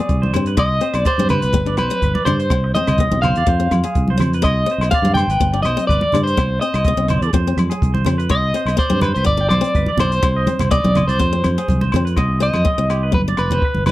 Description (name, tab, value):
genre	highlife guitar band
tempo	124 BPM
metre	4/4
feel	straight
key	C harmonic minor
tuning	A4 = 441 Hz
part	electric guitar at the edge of break-up	melody	0.0-13.9 s	B4 to G5	-20 LUFS	equal	tremolo
part	picked steel-string acoustic guitar	accompaniment	0.0-13.9 s	B3 to D4	-26 LUFS	left 8 dB	none
part	clean electric guitar	arpeggios	0.0-13.9 s	G4 to G5	-26 LUFS	right 4 dB	slapback echo
part	fingered electric bass	bass	0.1-13.9 s	F1 to G2	-19 LUFS	equal	none
part	compact cocktail drum kit	drums	0.1-13.9 s	hi-hat, kick drum, rim click	-22 LUFS	equal	none
part	congas	percussion	0.2-13.9 s	none	-22 LUFS	right 1 dB	none
part	agogo bells	percussion	0.3-13.9 s	none	-30 LUFS	left 7 dB	none
room	small room ambience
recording	dry, close 1970s-style studio recording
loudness	-15 LUFS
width	side -16 dB against mid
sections	0.0-12.2 A section; 12.2-13.9 B section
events	none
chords	0.0 Fm (rootless); 0.6 Cm; 1.5 G; 2.5 Cm; 3.5 Fm; 4.4 Cm; 5.4 G; 6.4 Cm; 7.3 Fm; 8.3 Cm; 9.3 G; 10.2 Cm; 11.2 Fm; 12.2 Cm; 13.1 G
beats	0.10 | 0.58 1.06 1.54 2.03 | 2.51 2.99 3.48 3.96 | 4.44 4.92 5.41 5.89 | 6.37 6.85 7.34 7.82 | 8.30 8.78 9.27 9.75 | 10.23 10.71 11.20 11.68 | 12.16 12.65 13.13 13.62